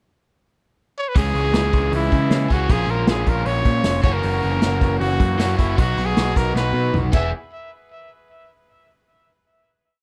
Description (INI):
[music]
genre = indie rock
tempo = 155 BPM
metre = 4/4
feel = straight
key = unclear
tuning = A4 = 440 Hz
[part]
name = clear trumpet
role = melody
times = 1.0-7.3 s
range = E4 to E5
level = -27 LUFS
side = equal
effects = none
[part]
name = overdriven electric guitar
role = riff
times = 1.1-7.3 s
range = E3 to G#4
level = -27 LUFS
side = equal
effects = none
[part]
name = growling picked electric bass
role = bass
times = 1.2-7.3 s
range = E1 to C#3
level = -24 LUFS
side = equal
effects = overdrive
[part]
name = unplugged drum kit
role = drums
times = 1.2-7.2 s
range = crash cymbal, hi-hat, kick drum, snare drum, toms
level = -22 LUFS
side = equal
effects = none
[sound]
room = small room reverb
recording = none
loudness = -19 LUFS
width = mono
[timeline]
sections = 0.0-1.2 pickup bar; 1.2-7.3 pre-chorus; 7.3-8.9 final hit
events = drum fill 6.6-7.3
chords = 0.0 N.C.; 1.2 C#m; 2.7 A#m; 4.0 F#7; 5.8 B; 7.1 E; 7.3 N.C.